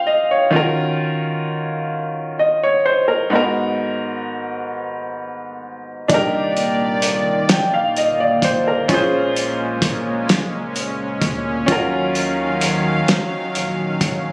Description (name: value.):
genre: slow six-eight R&B.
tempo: 43 BPM (dotted quarters).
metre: 6/8.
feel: straight.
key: unclear.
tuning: A4 = 439 Hz.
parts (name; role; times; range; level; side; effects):
clear concert grand piano; accompaniment; 0.0-14.3 s; Ab2 to G5; -21 LUFS; equal; none.
warm analog pad; sustained chords; 6.1-14.3 s; Bb2 to F5; -24 LUFS; equal; chorus, tremolo.
round analog bass; bass; 6.1-14.3 s; G1 to Eb2; -33 LUFS; equal; none.
cloth-damped thuddy drum kit; drums; 6.1-14.2 s; hi-hat, kick drum, snare drum; -22 LUFS; equal; none.
room: light reverb.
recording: recorded on a phone in the room, studio reverb, compression.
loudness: -19 LUFS.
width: mono.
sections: 0.0-14.3 A section.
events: none.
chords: 0.0 Bbm9; 0.5 Ebm9; 3.3 Abm9; 6.1 Cm9; 8.9 Bbm9; 11.7 Ebm9.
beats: | 0.52 1.92 | 3.31 4.71 | 6.10 7.50 | 8.89 10.29 | 11.68 13.08.